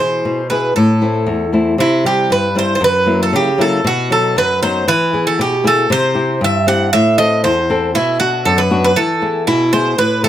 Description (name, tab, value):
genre	greek folk, Greek bouzouki band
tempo	117 BPM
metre	2/4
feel	straight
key	unclear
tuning	A4 = 443 Hz
part	Greek bouzouki	melody	0.0-10.3 s	E4 to F#5	-14 LUFS	right 2 dB	none
part	flamenco guitar	accompaniment	0.0-10.3 s	E2 to A4	-16 LUFS	left 2 dB	none
room	moderate small room reverb, RT60 0.5 s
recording	none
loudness	-12 LUFS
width	side -11 dB against mid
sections	0.0-1.8 A section; 1.8-10.0 B section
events	none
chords	0.0 E; 0.8 Am; 1.8 C; 2.8 F#7; 3.9 B; 4.9 E; 5.9 C; 6.9 Am; 8.0 Bm; 9.0 E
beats	0.25 | 0.77 1.28 | 1.80 2.31 | 2.83 3.34 | 3.86 4.37 | 4.88 5.40 | 5.91 6.42 | 6.93 7.44 | 7.95 8.46 | 8.97 9.48 | 9.99